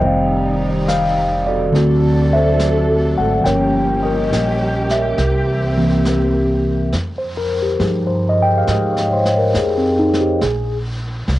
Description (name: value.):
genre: jazz ballad.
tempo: 69 BPM.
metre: 4/4.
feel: swing 68% on 8ths.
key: unclear.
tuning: A4 = 440 Hz.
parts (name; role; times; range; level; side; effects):
mellow tine electric piano; accompaniment; 0.0-10.8 s; D3 to G5; -16 LUFS; equal; phaser, plate reverb.
dark symphonic string section; sustained chords; 0.0-6.9 s; C3 to A4; -23 LUFS; right 1 dB; none.
upright bass; bass; 0.0-11.4 s; F1 to Ab2; -20 LUFS; equal; none.
vintage brush drum kit; drums; 0.0-11.4 s; brushed snare drum, hi-hat, snare drum; -29 LUFS; equal; cassette tape.
room: moderate studio ambience, RT60 0.5 s.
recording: home recording on cassette.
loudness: -14 LUFS.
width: side -16 dB against mid.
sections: 0.0-6.9 A section; 6.9-11.4 B section.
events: none.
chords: 0.0 Fsus2; 1.7 D7; 3.5 Gm7b5; 5.2 C7; 6.9 Fm9; 10.4 N.C..